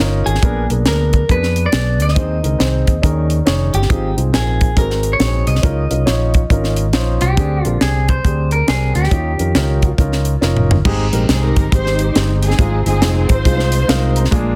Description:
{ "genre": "uptempo gospel", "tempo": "138 BPM", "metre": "4/4", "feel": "swing 63% on 8ths", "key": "Ab major", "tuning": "A4 = 439 Hz", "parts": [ { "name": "clean electric guitar", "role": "melody", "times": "0.0-10.4 s", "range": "G4 to Eb5", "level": "-25 LUFS", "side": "equal", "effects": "none" }, { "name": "dark upright piano", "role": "accompaniment", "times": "0.0-14.6 s", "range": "Ab2 to Bb5", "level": "-24 LUFS", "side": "equal", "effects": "none" }, { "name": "fingered electric bass", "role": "bass", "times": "0.0-14.6 s", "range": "F1 to F2", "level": "-19 LUFS", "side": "equal", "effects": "none" }, { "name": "tight funk drum kit", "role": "drums", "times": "0.3-14.4 s", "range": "crash cymbal, hi-hat, kick drum, snare drum, toms", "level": "-19 LUFS", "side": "equal", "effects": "none" }, { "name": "warm studio string section", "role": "melody", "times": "11.3-14.2 s", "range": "C4 to C5", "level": "-24 LUFS", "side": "equal", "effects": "none" } ], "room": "light reverb, studio reverb", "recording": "dense, heavily limited modern master", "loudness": "-15 LUFS", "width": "mono", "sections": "0.0-10.9 A section; 10.9-14.6 B section", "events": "drum fill 10.4-10.9; upright piano fill 13.7-14.3", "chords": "0.4 Bb7b9; 2.2 Ab; 3.0 Eb7sus4; 3.9 Ab6; 4.8 Ab7; 5.6 Db69; 7.4 Bb13; 9.1 Eb9; 10.9 Abmaj7; 12.6 Fm7" }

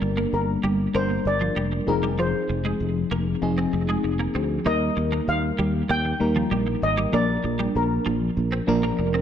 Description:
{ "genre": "pop", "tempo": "97 BPM", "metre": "4/4", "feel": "straight", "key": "Eb major", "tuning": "A4 = 440 Hz", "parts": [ { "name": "steel pan", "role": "melody", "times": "0.0-9.0 s", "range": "Bb4 to G5", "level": "-28 LUFS", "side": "left 1 dB", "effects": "tape echo" }, { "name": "FM electric piano with auto-pan", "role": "accompaniment", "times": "0.0-9.2 s", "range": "F3 to Bb4", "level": "-25 LUFS", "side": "left 2 dB", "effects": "phaser" }, { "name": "twelve-string electric guitar", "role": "riff", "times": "0.0-9.2 s", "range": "F3 to Eb4", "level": "-30 LUFS", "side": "right 2 dB", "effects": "ensemble chorus, tape echo" }, { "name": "sustaining fretless electric bass", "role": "bass", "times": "0.0-9.2 s", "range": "F1 to Eb2", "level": "-26 LUFS", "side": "equal", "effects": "lush chorus" } ], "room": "moderate plate reverb, RT60 2.5 s", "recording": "dark, warm production", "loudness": "-21 LUFS", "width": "side -9 dB against mid", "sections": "0.0-4.7 A section; 4.7-9.2 B section", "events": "none", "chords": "0.0 Gm; 1.9 Fm7; 4.7 Eb; 7.1 Bb" }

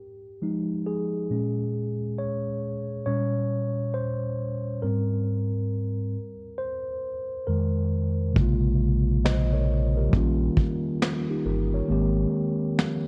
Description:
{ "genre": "lo-fi hip hop", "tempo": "68 BPM", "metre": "4/4", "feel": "swing 64% on 16ths", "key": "Bb dorian", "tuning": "A4 = 440 Hz", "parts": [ { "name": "mellow tine electric piano", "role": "accompaniment", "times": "0.0-13.1 s", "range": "F2 to Eb5", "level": "-28 LUFS", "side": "equal", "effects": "cassette tape, low-pass filter" }, { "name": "sub bass with octave", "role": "bass", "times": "8.4-13.1 s", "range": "G1 to Bb1", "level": "-27 LUFS", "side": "equal", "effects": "none" }, { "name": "vintage brush drum kit", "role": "drums", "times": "8.4-13.0 s", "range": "kick drum, snare drum", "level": "-27 LUFS", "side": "equal", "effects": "none" } ], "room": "light reverb, studio ambience", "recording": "dark, warm production", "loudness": "-26 LUFS", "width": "mono", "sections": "0.0-8.4 A section; 8.4-13.1 B section", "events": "tine electric piano solo 0.0-8.4; hi-hats muted 8.4-13.1", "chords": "0.0 Fm9; 1.3 Bbm7; 3.1 Bbm69; 4.8 Abmaj9; 6.2 Fm7; 8.4 Bbm7; 10.1 Eb7/Bb; 11.9 Abmaj9" }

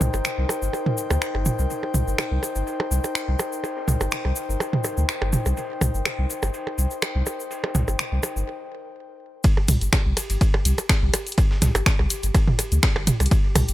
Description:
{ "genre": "minimal techno", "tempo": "124 BPM", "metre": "4/4", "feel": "swing 54% on 16ths", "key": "C minor", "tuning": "A4 = 440 Hz", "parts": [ { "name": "saturated sub bass", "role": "bass", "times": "0.0-13.7 s", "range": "G1 to D2", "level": "-23 LUFS", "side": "equal", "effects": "sidechain pumping" }, { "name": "breakbeat sampler-style drum kit", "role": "drums", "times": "0.0-13.7 s", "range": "hi-hat, ride cymbal, snare drum", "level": "-39 LUFS", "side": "right 1 dB", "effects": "high-pass filter on cymbals, low-pass filter on cymbals, high-pass filter on hats, low-pass filter on hats, high-pass filter on snare, low-pass filter on snare" }, { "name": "cabasa", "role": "percussion", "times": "0.0-13.7 s", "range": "none", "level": "-32 LUFS", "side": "left 3 dB", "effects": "none" }, { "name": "electronic toms and percussion blips", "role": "percussion", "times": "0.0-13.7 s", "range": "none", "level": "-26 LUFS", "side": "right 2 dB", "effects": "overdrive, digital delay" }, { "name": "airy breathy pad", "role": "texture", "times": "0.0-8.5 s", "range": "Eb4 to G5", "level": "-30 LUFS", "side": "left 3 dB", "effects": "chorus, sidechain pumping" }, { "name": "pulsing gated texture", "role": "texture", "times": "0.0-13.7 s", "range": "G4 to Bb4", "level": "-38 LUFS", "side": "equal", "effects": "chorus, built-in reverb, sidechain pumping" }, { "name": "punchy analog drum machine", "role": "drums", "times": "0.2-13.7 s", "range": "finger snaps, hi-hat", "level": "-26 LUFS", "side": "equal", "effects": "none" }, { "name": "electronic kick drum", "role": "drums", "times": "9.4-13.4 s", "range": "none", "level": "-20 LUFS", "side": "equal", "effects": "none" } ], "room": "little or no reverb", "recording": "none", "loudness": "-20 LUFS", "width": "side -15 dB against mid", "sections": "0.0-9.4 A section; 9.4-13.7 B section", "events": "stop 8.5-9.4; drop 9.4-13.7", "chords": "0.0 Cm; 9.4 C5" }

